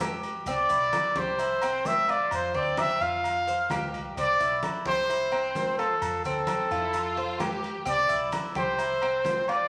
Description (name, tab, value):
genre	latin, Cuban son and guajira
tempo	130 BPM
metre	4/4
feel	straight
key	C major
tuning	A4 = 441 Hz
part	breathy trumpet	melody	0.0-9.7 s	A4 to F5	-28 LUFS	equal	none
part	Cuban tres	arpeggios	0.0-9.7 s	C4 to C5	-35 LUFS	equal	none
part	woody fretless electric bass	bass	0.0-9.4 s	B1 to F2	-44 LUFS	equal	none
part	congas	percussion	0.0-9.7 s	none	-42 LUFS	equal	none
part	maracas	percussion	0.0-9.7 s	none	-52 LUFS	equal	none
part	timbales and agogo bells	percussion	0.0-9.7 s	none	-39 LUFS	equal	none
part	warm studio violin section	second line	6.7-7.7 s	E4 to G4	-38 LUFS	equal	none
room	wet large studio reverb, RT60 1.3 s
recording	vinyl crackle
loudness	-27 LUFS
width	mono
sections	0.0-9.7 A section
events	none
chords	0.5 Cmaj7; 2.3 Fsus2; 4.2 Cmaj7; 6.0 Fadd9; 7.9 Cmaj7